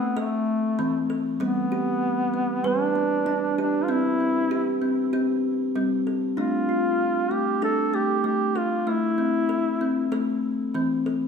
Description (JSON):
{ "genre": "world meditative, meditative tuned percussion", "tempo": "96 BPM", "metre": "4/4", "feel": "straight", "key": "D dorian", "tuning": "A4 = 440 Hz", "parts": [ { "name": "mellow duduk", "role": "melody", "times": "0.0-10.1 s", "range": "A3 to A4", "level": "-26 LUFS", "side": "equal", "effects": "diffuse ambient delay" }, { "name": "kalimba", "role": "arpeggios", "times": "0.0-11.3 s", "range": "E3 to B4", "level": "-24 LUFS", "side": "equal", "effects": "none" } ], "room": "wet echo chamber reverb, RT60 1.5 s, small room ambience", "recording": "none", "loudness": "-22 LUFS", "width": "side -6 dB against mid", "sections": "0.0-11.3 A section", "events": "none", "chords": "0.0 Am; 1.4 G; 3.9 C; 6.4 Dm; 8.9 Am", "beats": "0.16 0.78 | 1.40 2.02 2.64 3.26 | 3.88 4.50 5.13 5.75 | 6.37 6.99 7.62 8.24 | 8.86 9.49 10.11 10.74" }